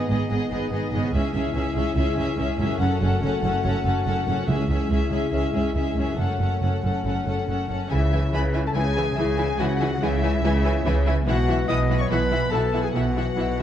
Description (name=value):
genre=cinematic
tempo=143 BPM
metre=4/4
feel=straight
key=C# minor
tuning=A4 = 440 Hz
part: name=rich symphonic violin section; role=melody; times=0.0-13.6 s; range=D#5 to D#6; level=-30 LUFS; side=left 4 dB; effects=none
part: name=warm symphonic violin section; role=second line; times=0.0-13.6 s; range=G#4 to G#5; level=-33 LUFS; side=left 2 dB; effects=none
part: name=rich symphonic viola section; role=accompaniment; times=0.0-13.6 s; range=E3 to E4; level=-30 LUFS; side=right 2 dB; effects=none
part: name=dark French horn section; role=sustained chords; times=0.0-7.7 s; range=G#3 to F#4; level=-30 LUFS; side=left 5 dB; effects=none
part: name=concert harp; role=arpeggios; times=0.0-13.6 s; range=F#2 to B4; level=-32 LUFS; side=left 7 dB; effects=none
part: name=clear symphonic cello section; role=bass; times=0.1-13.6 s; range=C#2 to C#3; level=-27 LUFS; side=right 1 dB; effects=none
part: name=clear symphonic double bass section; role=bass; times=0.1-13.6 s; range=F#1 to C#2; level=-26 LUFS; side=right 2 dB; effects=none
part: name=timpani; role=percussion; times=4.5-5.1 s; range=C#3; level=-29 LUFS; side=right 2 dB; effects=none
part: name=clear clarinet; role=second line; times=7.9-13.6 s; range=E4 to D#5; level=-29 LUFS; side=left 1 dB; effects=none
room=moderate scoring stage reverb, RT60 1.6 s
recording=dark, warm production, nothing above 10.8 kHz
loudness=-21 LUFS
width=side -10 dB against mid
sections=0.0-7.9 A section; 7.9-13.6 B section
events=build-up 0.0-7.9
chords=0.0 G#m; 1.1 C#m; 2.8 F#m; 4.5 C#m; 6.2 F#m; 7.9 C#m; 11.3 Bsus4